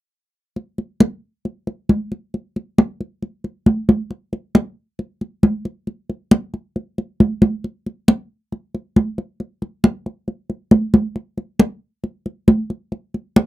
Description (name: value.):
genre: latin.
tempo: 136 BPM.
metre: 4/4.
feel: straight.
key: none.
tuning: none.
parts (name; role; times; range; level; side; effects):
congas; percussion; 0.6-13.5 s; none; -14 LUFS; equal; none.
room: light reverb.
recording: dry, close 1970s-style studio recording.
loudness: -17 LUFS.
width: side -17 dB against mid.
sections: 0.6-7.6 A section; 7.6-13.5 B section.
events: none.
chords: none.